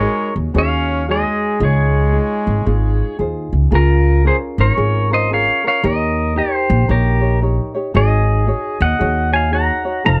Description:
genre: Hawaiian.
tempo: 114 BPM.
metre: 4/4.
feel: swing 64% on 8ths.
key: Db major.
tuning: A4 = 442 Hz.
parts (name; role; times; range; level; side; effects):
pedal steel guitar; melody; 0.0-10.2 s; F4 to Bb5; -20 LUFS; equal; none.
clear trumpet; second line; 0.0-3.2 s; Ab3 to Db4; -25 LUFS; equal; none.
ukulele; accompaniment; 0.0-10.2 s; Db4 to Db5; -26 LUFS; equal; none.
upright bass; bass; 0.0-10.2 s; F1 to Eb2; -18 LUFS; equal; none.
room: small room ambience.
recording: dry, close 1970s-style studio recording.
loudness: -16 LUFS.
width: mono.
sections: 0.0-3.7 A section; 3.7-10.2 B section.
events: none.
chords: 0.0 Ab7sus4; 1.6 Dbmaj9; 3.7 Db6; 5.8 Eb7; 7.9 Ab7sus4.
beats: 0.01 0.54 1.07 | 1.60 2.13 2.66 3.19 | 3.72 4.25 4.77 5.30 | 5.83 6.36 6.88 7.41 | 7.94 8.47 8.99 9.52 | 10.05.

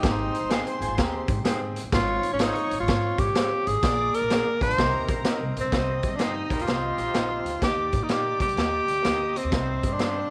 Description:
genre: uptempo 1960s-style soul.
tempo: 126 BPM.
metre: 4/4.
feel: swing 66% on 8ths.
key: C minor.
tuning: A4 = 440 Hz.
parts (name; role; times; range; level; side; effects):
breathy tenor saxophone; melody; 0.0-10.3 s; C4 to C5; -28 LUFS; equal; slapback echo.
rich studio string section; second line; 0.0-10.3 s; Bb4 to Eb6; -39 LUFS; equal; none.
bright grand piano; accompaniment; 0.0-10.3 s; Ab2 to Bb5; -36 LUFS; equal; none.
clean electric guitar; riff; 0.0-1.7, 4.6-7.6 s; D4 to C5; -38 LUFS; equal; spring reverb.
upright bass; bass; 0.0-10.2 s; G1 to Bb2; -34 LUFS; equal; none.
raw garage drum kit; drums; 0.0-10.1 s; hi-hat, kick drum, snare drum; -30 LUFS; equal; none.
electric guitar through a small old amp; stabs; 0.5-10.1 s; Bb3 to C5; -37 LUFS; equal; lush chorus.
mellow horn section; second line; 5.7-10.2 s; G3 to Eb5; -41 LUFS; equal; none.
room: light reverb, small room reverb.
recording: none.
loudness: -25 LUFS.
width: mono.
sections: 0.0-5.7 A section; 5.7-10.3 B section.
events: none.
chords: 0.0 Abmaj7; 1.9 Dbmaj7; 3.8 Bb7; 4.8 Cm7; 5.7 Cm; 7.6 Eb; 9.5 Cm.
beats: | 0.03 0.51 0.98 1.46 | 1.93 2.40 2.88 3.35 | 3.83 4.30 4.78 5.25 | 5.73 6.20 6.68 7.15 | 7.63 8.10 8.57 9.05 | 9.53 10.00.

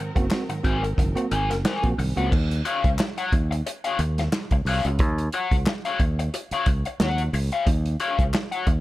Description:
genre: funk.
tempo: 90 BPM.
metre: 4/4.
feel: swing 56% on 16ths.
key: Eb dorian.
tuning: A4 = 435 Hz.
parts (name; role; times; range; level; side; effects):
raw garage guitar; accompaniment; 0.0-8.7 s; Gb4 to Ab5; -27 LUFS; left 4 dB; wah, overdrive.
warm studio string section; sustained chords; 0.0-2.3 s; Gb3 to Bb4; -37 LUFS; equal; none.
bell-like tine electric piano; stabs; 0.0-2.3 s; Ab2 to Gb4; -29 LUFS; right 3 dB; none.
fingered electric bass; bass; 0.2-8.8 s; Gb1 to Eb2; -25 LUFS; equal; none.
warm soul drum kit; drums; 0.2-8.8 s; crash cymbal, hi-hat, kick drum, snare drum; -24 LUFS; equal; none.
group handclap; percussion; 0.3-8.5 s; none; -35 LUFS; left 4 dB; none.
room: small room ambience.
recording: none.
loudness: -21 LUFS.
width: side -17 dB against mid.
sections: 0.0-2.3 A section; 2.3-8.8 B section.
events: none.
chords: 0.0 Ab9; 2.3 Ebm9.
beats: 0.31 0.98 1.65 | 2.32 2.99 3.66 4.33 | 4.99 5.66 6.33 7.00 | 7.67 8.34.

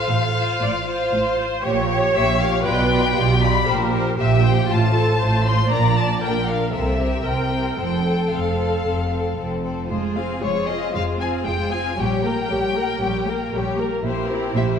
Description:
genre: quick classical-period movement for string orchestra.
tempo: 117 BPM.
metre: 4/4.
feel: straight.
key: F major, F minor from 9.9 s.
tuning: A4 = 439 Hz.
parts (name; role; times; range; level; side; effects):
rich chamber violin section; melody; 0.0-14.6 s; Db5 to C6; -25 LUFS; left 4 dB; none.
rich chamber violin section; second line; 0.0-14.8 s; C4 to F5; -27 LUFS; left 4 dB; none.
rich chamber viola section; accompaniment; 0.0-14.8 s; G3 to D5; -24 LUFS; right 1 dB; none.
rich chamber double bass section; bass; 0.1-14.8 s; F1 to C2; -24 LUFS; right 2 dB; none.
rich symphonic cello section; bass; 0.1-14.8 s; F2 to C3; -26 LUFS; right 2 dB; none.
room: wet scoring stage reverb, RT60 1.6 s.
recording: minimal, uncompressed stereo recording.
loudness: -18 LUFS.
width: side -7 dB against mid.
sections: 0.0-9.9 A section; 9.9-14.8 B section.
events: none.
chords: 0.0 F/A; 1.6 Gdim/Bb; 2.7 G7/B; 3.7 C5/Bb; 4.7 F/A; 5.7 Bb; 6.7 C7; 7.8 F; 9.9 Fm; 12.0 Gdim/Bb; 14.0 C7/Bb.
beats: 0.10 0.62 1.13 | 1.64 2.14 2.65 3.16 | 3.67 4.18 4.70 5.21 | 5.71 6.23 6.74 7.26 | 7.79 8.32 8.85 9.37 | 9.90 10.42 10.94 11.46 | 11.98 12.50 13.02 13.53 | 14.04 14.56.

